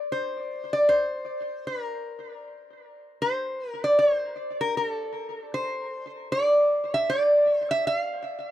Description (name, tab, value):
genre	hawaiian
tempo	77 BPM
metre	4/4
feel	swing 59% on 8ths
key	unclear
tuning	A4 = 442 Hz
part	lap resonator guitar	solo	0.1-8.5 s	A4 to F5	-23 LUFS	equal	tape echo
room	small room ambience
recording	dry, close 1970s-style studio recording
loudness	-23 LUFS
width	side -13 dB against mid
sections	0.0-8.5 A section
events	none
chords	none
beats	| 0.10 0.87 1.65 2.42 | 3.20 3.97 4.75 5.52 | 6.30 7.08 7.85